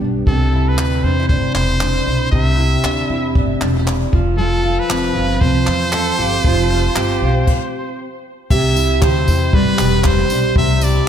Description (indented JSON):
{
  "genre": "acoustic pop",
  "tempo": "117 BPM",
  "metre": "4/4",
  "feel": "swing 60% on 16ths",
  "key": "unclear",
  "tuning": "A4 = 438 Hz",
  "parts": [
    { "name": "nylon-string guitar", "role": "accompaniment", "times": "0.0-11.1 s", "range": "G2 to G4", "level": "-19 LUFS", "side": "equal", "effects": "double-tracked left and right" },
    { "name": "upright bass", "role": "bass", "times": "0.0-11.0 s", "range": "E1 to E2", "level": "-18 LUFS", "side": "equal", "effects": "none" },
    { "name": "brilliant trumpet", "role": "melody", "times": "0.3-11.1 s", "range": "A4 to E5", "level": "-21 LUFS", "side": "equal", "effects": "tape echo" },
    { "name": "jazz brush drum kit", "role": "drums", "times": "0.3-11.0 s", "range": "crash cymbal, handclaps, kick drum, tambourine", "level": "-20 LUFS", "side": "equal", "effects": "none" },
    { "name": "pedal steel guitar", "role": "second line", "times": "5.9-7.4 s", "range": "F4 to A4", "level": "-23 LUFS", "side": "right 4 dB", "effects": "lush chorus" }
  ],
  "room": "moderate lush hall reverb, RT60 2.2 s",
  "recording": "dreamy mix soaked in reverb",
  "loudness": "-13 LUFS",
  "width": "side -9 dB against mid",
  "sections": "0.3-8.5 A section; 8.5-11.1 B section",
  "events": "stop 7.5-8.5",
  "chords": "0.3 Cadd9; 4.1 Fsus2; 8.2 N.C.; 8.5 Cadd9",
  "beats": "| 0.27 0.78 1.30 1.81 | 2.33 2.84 3.36 3.87 | 4.39 4.90 5.42 5.93 | 6.45 6.96 7.48 7.99 | 8.51 9.02 9.53 10.05 | 10.56 11.08"
}